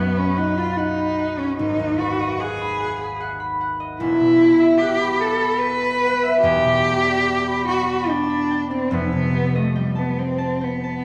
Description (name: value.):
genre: classical, impressionist duo for cello and harp.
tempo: 73 BPM.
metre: 3/4.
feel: uneven beats, rubato.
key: G major.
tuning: A4 = 441 Hz.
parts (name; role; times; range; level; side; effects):
warm cello; melody; 0.0-11.0 s; G3 to B4; -22 LUFS; equal; none.
concert harp; accompaniment; 0.0-11.0 s; E1 to B5; -24 LUFS; equal; none.
room: wet recital hall reverb, RT60 1.7 s.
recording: heard from further back in the room.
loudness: -20 LUFS.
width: mono.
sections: 0.0-11.0 A section.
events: none.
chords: 0.0 Bsus2; 1.6 Abm7; 4.0 Emadd9; 6.4 G6/E; 8.9 F9.